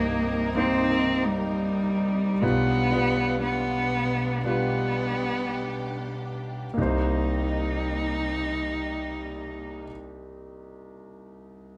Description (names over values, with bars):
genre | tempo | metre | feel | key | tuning
pop | 48-67 BPM | 4/4 | straight | unclear | A4 = 441 Hz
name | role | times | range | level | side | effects
warm cello | melody | 0.0-9.9 s | G3 to Eb4 | -29 LUFS | equal | none
warm concert grand piano | accompaniment | 0.0-11.8 s | B1 to C5 | -31 LUFS | equal | none
rich studio string section | sustained chords | 0.0-9.9 s | B2 to Bb4 | -36 LUFS | equal | none
room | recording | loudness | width
moderate large studio reverb, RT60 0.9 s | band playing live in one room | -26 LUFS | mono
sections
0.0-6.8 A section; 6.8-11.7 B section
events
slowing down 0.0-6.8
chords
0.0 Cm7; 2.4 G7/B; 6.8 Cm7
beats
0.57 1.49 | 2.43 3.42 4.46 5.57 | 6.78 8.03 9.27 10.50